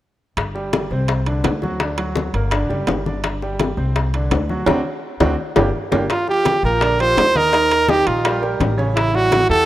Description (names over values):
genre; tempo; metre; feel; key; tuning
latin, salsa; 168 BPM; 4/4; straight; G harmonic minor, G minor from 6.1 s; A4 = 441 Hz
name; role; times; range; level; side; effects
upright bass; bass; 0.4-9.7 s; F#1 to E2; -22 LUFS; equal; none
bongos; percussion; 0.4-9.5 s; none; -24 LUFS; left 6 dB; none
congas; percussion; 0.4-9.7 s; none; -27 LUFS; left 2 dB; none
timbales; percussion; 0.4-9.5 s; none; -25 LUFS; right 4 dB; none
bright upright piano; accompaniment; 0.5-9.6 s; C#3 to Eb5; -24 LUFS; right 2 dB; none
brilliant trumpet; melody; 6.1-9.7 s; E4 to C5; -16 LUFS; right 2 dB; none
room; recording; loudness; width
moderate plate reverb, RT60 3.7 s; rough home demo mix; -16 LUFS; side -14 dB against mid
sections
0.4-6.1 A section; 6.1-9.7 B section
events
band accent 4.7-6.1; drum fill 5.6-6.1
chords
0.4 Gsus4; 1.1 Csus2; 1.8 D; 2.5 G5; 4.0 Csus2; 4.7 D7; 5.4 Gm; 6.1 Gm7; 7.5 Ebadd9; 9.0 A7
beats
| 0.37 0.73 1.09 1.45 | 1.80 2.16 2.52 2.88 | 3.24 3.59 3.95 4.31 | 4.67 5.03 5.38 5.74 | 6.10 6.46 6.82 7.18 | 7.54 7.89 8.25 8.61 | 8.97 9.33